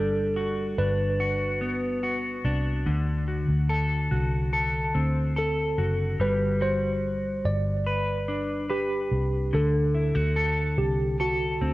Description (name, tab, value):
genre	dream pop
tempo	72 BPM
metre	4/4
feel	straight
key	G major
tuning	A4 = 442 Hz
part	tine electric piano	melody	0.0-11.7 s	F#4 to D5	-28 LUFS	right 1 dB	overdrive, fast stereo tremolo, cassette tape, tape echo
part	clean electric guitar	arpeggios	0.0-11.7 s	D3 to B4	-27 LUFS	left 1 dB	analog chorus, tape echo
part	vintage muted fingered electric bass	bass	0.0-11.7 s	F#1 to D2	-28 LUFS	equal	none
room	light reverb, digital ambience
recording	home recording on cassette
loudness	-23 LUFS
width	side -18 dB against mid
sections	0.0-11.7 A section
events	none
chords	0.0 Gmaj7; 2.9 D7; 6.2 Gmaj7; 9.5 D7